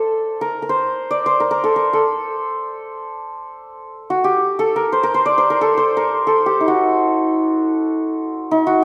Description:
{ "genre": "Persian modal ensemble", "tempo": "free time", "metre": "none", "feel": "none", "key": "D dastgah homayun", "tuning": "A4 = 440 Hz", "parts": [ { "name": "santur", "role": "solo", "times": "0.0-8.8 s", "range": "Eb4+45c to D5", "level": "-18 LUFS", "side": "equal", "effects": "none" } ], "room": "wet recital hall reverb, RT60 1.4 s", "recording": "none", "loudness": "-18 LUFS", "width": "mono", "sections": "0.0-8.8 A section", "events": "none", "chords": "none" }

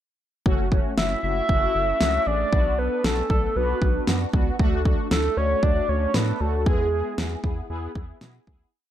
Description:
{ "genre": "synth-pop", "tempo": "116 BPM", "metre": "4/4", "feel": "straight", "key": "F# minor", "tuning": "A4 = 441 Hz", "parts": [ { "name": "mellow synth brass", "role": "accompaniment", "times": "0.5-8.7 s", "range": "A3 to A4", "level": "-29 LUFS", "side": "equal", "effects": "chorus, phaser" }, { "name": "rubbery square bass", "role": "bass", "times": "0.5-8.7 s", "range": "F#1 to B2", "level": "-27 LUFS", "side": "equal", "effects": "none" }, { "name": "pop drum kit", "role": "drums", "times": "0.5-8.6 s", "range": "kick drum, snare drum", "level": "-23 LUFS", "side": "equal", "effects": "overdrive" }, { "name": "soft octave-layered synth lead", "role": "melody", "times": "1.0-7.7 s", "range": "G#4 to E5", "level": "-24 LUFS", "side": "equal", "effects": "chorus" } ], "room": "light reverb", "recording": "dark, warm production", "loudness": "-20 LUFS", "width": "side -11 dB against mid", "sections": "0.5-8.7 verse", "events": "fade-out 6.7-8.7", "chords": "0.5 F#m; 2.5 Bm; 4.6 D; 6.7 E" }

